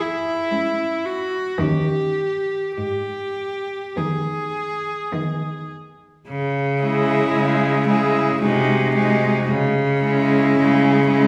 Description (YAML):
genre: classical, lyrical piece for cello ensemble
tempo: 49-58 BPM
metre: 3/4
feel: rubato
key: G# minor, C# minor from 6.3 s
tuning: A4 = 440 Hz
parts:
  - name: warm cello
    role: melody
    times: 0.0-11.3 s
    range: E4 to G#4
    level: -27 LUFS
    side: equal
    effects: none
  - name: bright cello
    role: bass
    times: 0.0-11.3 s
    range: D#2 to C#3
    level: -22 LUFS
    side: equal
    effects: none
  - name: rich cello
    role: second line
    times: 0.5-11.3 s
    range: B3 to E4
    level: -26 LUFS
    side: equal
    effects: none
  - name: rich cello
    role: accompaniment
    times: 0.5-11.3 s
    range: D#3 to G#3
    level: -25 LUFS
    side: equal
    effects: none
room: wet recital hall reverb, RT60 1.4 s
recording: recorded in a church or concert hall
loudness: -20 LUFS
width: mono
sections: 0.0-6.3 A section; 6.3-11.3 B section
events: none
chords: 0.0 C#m/E; 1.6 D#7; 2.8 G#m; 6.3 C#m; 8.4 G#7/B#; 9.5 C#m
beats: 0.51 1.59 | 2.76 3.97 5.13 | 6.28 7.36 8.42 | 9.49 10.56